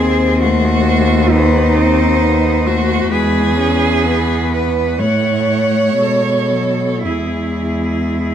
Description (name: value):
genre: classical, lyrical piece for cello ensemble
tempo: 53-68 BPM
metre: 4/4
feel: rubato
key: E major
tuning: A4 = 440 Hz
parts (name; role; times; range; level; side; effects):
- rich cello; melody; 0.0-8.3 s; G#4 to F#5; -22 LUFS; left 8 dB; none
- clear cello; second line; 0.0-8.3 s; D#4 to C#5; -18 LUFS; right 4 dB; none
- clear cello; accompaniment; 0.0-8.3 s; F#3 to C#4; -20 LUFS; left 3 dB; none
- rich cello; bass; 0.0-8.3 s; D#2 to B2; -16 LUFS; equal; none
room: light reverb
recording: close, detailed microphones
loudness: -12 LUFS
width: side -9 dB against mid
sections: 0.0-8.3 A section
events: none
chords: 0.0 D#dim7; 3.1 E; 5.0 F#m/A; 6.0 B5; 7.0 E